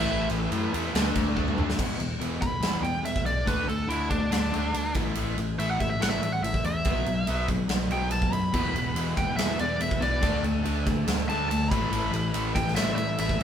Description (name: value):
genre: hard rock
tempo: 142 BPM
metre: 4/4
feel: straight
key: unclear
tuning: A4 = 440 Hz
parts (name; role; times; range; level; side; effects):
- biting lead guitar; melody; 0.0-13.4 s; D4 to B5; -30 LUFS; equal; overdrive
- overdriven tonewheel organ; sustained chords; 0.0-1.8, 8.5-13.4 s; A3 to F#5; -40 LUFS; right 2 dB; none
- cranked stack guitar; riff; 0.0-13.4 s; E2 to D4; -34 LUFS; right 4 dB; overdrive
- distorted electric guitar; riff; 0.0-1.8, 8.5-13.4 s; E2 to D4; -34 LUFS; equal; distortion
- overdriven semi-hollow guitar; riff; 0.0-13.4 s; E2 to D4; -32 LUFS; left 6 dB; none
- overdriven picked electric bass; bass; 0.1-13.4 s; E1 to A2; -32 LUFS; equal; none
- huge arena drum kit; drums; 0.3-13.4 s; crash cymbal, kick drum, ride cymbal, snare drum, toms; -29 LUFS; right 1 dB; none
room: moderate stone room reverb, RT60 1.0 s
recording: band playing live in one room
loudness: -24 LUFS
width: side -9 dB against mid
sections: 0.0-1.8 A section; 1.8-13.4 B section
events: drum fill 1.4-1.8; lead electric guitar solo 1.8-13.4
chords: 0.0 A5; 0.9 D5; 1.8 E5; 3.5 D5; 5.0 A5; 6.9 Bsus4; 8.5 E5; 10.2 D5; 11.7 A5